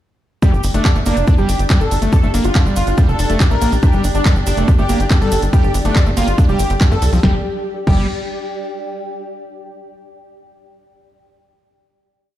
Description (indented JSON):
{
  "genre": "psychedelic trance",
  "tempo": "141 BPM",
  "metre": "4/4",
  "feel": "straight",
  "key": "G minor",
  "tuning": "A4 = 440 Hz",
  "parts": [
    { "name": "wide unison lead", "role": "melody", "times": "0.4-8.0 s", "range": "D4 to Bb4", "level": "-23 LUFS", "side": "equal", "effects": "phaser, sidechain pumping, digital delay" },
    { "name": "pulsing gated texture", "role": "sustained chords", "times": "0.6-7.2 s", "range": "D4", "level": "-28 LUFS", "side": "equal", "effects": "chorus, built-in reverb, sidechain pumping" },
    { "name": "screaming distorted acid line", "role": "riff", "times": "0.4-8.1 s", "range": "F3 to G4", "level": "-22 LUFS", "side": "moving between left 3 dB and right 4 dB", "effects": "distortion, chorus, auto-pan, sidechain pumping, tape echo" },
    { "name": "electronic kick drum", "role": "drums", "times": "0.4-8.0 s", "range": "none", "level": "-13 LUFS", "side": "equal", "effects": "none" },
    { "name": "techno drum kit", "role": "drums", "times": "0.4-8.0 s", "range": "crash cymbal, handclaps, hi-hat, snare drum", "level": "-25 LUFS", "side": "right 1 dB", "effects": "none" },
    { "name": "cabasa", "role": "percussion", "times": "0.4-7.2 s", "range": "none", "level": "-35 LUFS", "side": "right 4 dB", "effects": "none" },
    { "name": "granular cloud pad", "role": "texture", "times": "1.2-8.9 s", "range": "G4 to G5", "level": "-27 LUFS", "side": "left 2 dB", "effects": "built-in reverb, sidechain pumping" },
    { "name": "tight sequencer bass", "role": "bass", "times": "0.5-8.1 s", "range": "F1 to G2", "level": "-17 LUFS", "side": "equal", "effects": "none" }
  ],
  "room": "light reverb, digital ambience",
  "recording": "played on a big sound system in a bare room, stone room reverb",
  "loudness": "-13 LUFS",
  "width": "side -13 dB against mid",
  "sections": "0.4-7.2 drop; 7.2-8.9 final chord",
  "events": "drop 0.4-7.2",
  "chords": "0.4 G5",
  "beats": "| 0.42 0.85 1.27 1.70 | 2.13 2.55 2.98 3.40 | 3.83 4.25 4.68 5.11 | 5.53 5.96 6.38 6.81 | 7.23 7.66 8.08 8.51"
}